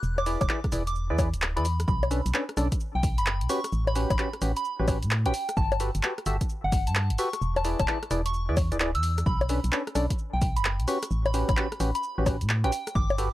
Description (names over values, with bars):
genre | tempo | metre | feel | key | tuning
UK garage, two-step garage | 130 BPM | 4/4 | swing 65% on 16ths | B minor | A4 = 440 Hz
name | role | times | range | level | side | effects
soft synth bell | melody | 0.0-13.2 s | F#5 to E6 | -32 LUFS | equal | chorus, phaser, analog delay
organ-like FM bass | bass | 0.0-13.3 s | D1 to A2 | -27 LUFS | equal | none
punchy analog drum machine | drums | 0.0-13.3 s | bongos, handclaps, hi-hat, rim click, shaker | -30 LUFS | left 2 dB | overdrive
percussive organ stab | stabs | 0.3-13.3 s | C#4 to E5 | -31 LUFS | equal | analog chorus
electronic kick drum | drums | 0.4-13.1 s | none | -27 LUFS | equal | overdrive
room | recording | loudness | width
little or no reverb | dry, gritty hardware recording | -24 LUFS | side -15 dB against mid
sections
0.0-13.3 A section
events
none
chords
0.0 E7; 1.9 Bm9; 3.5 A13; 5.3 Gmaj9; 7.4 E7; 9.3 Bm9; 10.9 A13; 12.7 Gmaj9